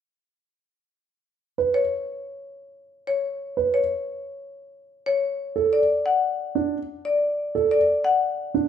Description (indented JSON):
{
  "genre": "classical, minimalist pattern music",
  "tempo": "181 BPM",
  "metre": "6/4",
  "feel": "straight",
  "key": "unclear",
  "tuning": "A4 = 440 Hz",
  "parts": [
    { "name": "dark baby grand piano", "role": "arpeggios", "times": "1.6-8.7 s", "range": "D4 to B4", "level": "-23 LUFS", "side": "right 6 dB", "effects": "none" },
    { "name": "marimba with hard mallets", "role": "melody", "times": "1.7-8.3 s", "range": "C#5 to F#5", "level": "-23 LUFS", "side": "left 4 dB", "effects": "none" }
  ],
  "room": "wet large studio reverb, RT60 1.1 s",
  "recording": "heard from further back in the room",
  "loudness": "-21 LUFS",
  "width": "side -8 dB against mid",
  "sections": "1.4-8.7 A section",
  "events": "none",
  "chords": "1.4 Bsus2; 5.4 D5",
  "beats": "| 1.42 1.75 2.08 2.41 2.74 3.07 | 3.40 3.74 4.07 4.40 4.73 5.06 | 5.39 5.72 6.06 6.39 6.72 7.05 | 7.38 7.71 8.04 8.38"
}